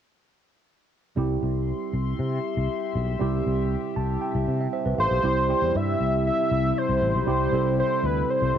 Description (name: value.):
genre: pop.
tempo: 118 BPM.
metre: 4/4.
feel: straight.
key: C major.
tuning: A4 = 440 Hz.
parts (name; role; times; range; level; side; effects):
tine electric piano; accompaniment; 1.2-8.6 s; G3 to A5; -28 LUFS; right 6 dB; overdrive, auto-pan, cassette tape.
chorused pulse-width pad; sustained chords; 1.2-8.6 s; C3 to C6; -32 LUFS; left 10 dB; cassette tape.
sustaining fretless electric bass; bass; 1.2-8.6 s; A1 to C3; -26 LUFS; left 1 dB; none.
wide unison lead; melody; 5.0-8.6 s; B4 to E5; -24 LUFS; left 1 dB; cassette tape.
room: wet booth ambience, RT60 0.2 s.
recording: home recording on cassette.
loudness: -22 LUFS.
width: side -9 dB against mid.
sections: 1.2-5.2 A section; 5.2-8.6 B section.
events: tine electric piano fill 3.7-5.2.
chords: 1.2 C.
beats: | 1.17 1.68 2.19 2.70 | 3.21 3.71 4.22 4.73 | 5.24 5.75 6.26 6.77 | 7.27 7.78 8.29.